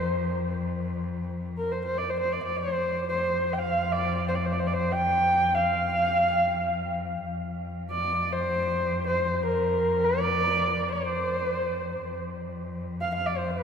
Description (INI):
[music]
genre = mongolian traditional, Mongolian folk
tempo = free time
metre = none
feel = none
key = F zhi mode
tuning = A4 = 440 Hz
[part]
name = dark horsehead fiddle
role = melody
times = 0.0-13.6 s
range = Bb4 to G5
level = -26 LUFS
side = right 1 dB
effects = none
[part]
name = rich cello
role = drone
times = 0.0-13.6 s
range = F2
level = -31 LUFS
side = left 2 dB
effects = none
[sound]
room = wet cathedral reverb, RT60 4.9 s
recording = in a vast, echoing space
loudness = -24 LUFS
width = side -7 dB against mid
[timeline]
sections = 0.0-13.6 A section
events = none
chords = none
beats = free time